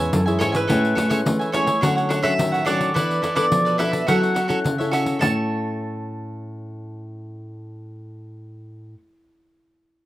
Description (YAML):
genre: samba and choro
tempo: 106 BPM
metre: 4/4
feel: straight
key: A major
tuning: A4 = 440 Hz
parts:
  - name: mandolin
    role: melody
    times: 0.0-8.9 s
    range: B4 to A5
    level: -23 LUFS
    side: right 1 dB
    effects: none
  - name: bright reedy bass bansuri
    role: second line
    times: 0.0-0.7 s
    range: G#4 to B4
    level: -29 LUFS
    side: equal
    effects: none
  - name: cavaquinho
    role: accompaniment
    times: 0.0-9.0 s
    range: D4 to G#5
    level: -26 LUFS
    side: right 2 dB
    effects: none
  - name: nylon-string guitar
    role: accompaniment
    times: 0.0-9.0 s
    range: A2 to A4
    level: -26 LUFS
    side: left 2 dB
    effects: none
  - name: nylon-string guitar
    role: bass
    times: 0.0-8.9 s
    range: F#2 to A3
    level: -26 LUFS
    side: equal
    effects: none
  - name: pandeiro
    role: percussion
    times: 0.1-5.3 s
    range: none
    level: -26 LUFS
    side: left 1 dB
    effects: none
room: moderate small room reverb, RT60 0.5 s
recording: rough home demo mix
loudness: -18 LUFS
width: side -15 dB against mid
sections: 0.7-5.2 A section; 5.2-7.5 B section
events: none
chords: 0.0 Amaj7; 1.8 Dmaj7; 3.0 E7sus4; 4.1 F#m7; 5.2 A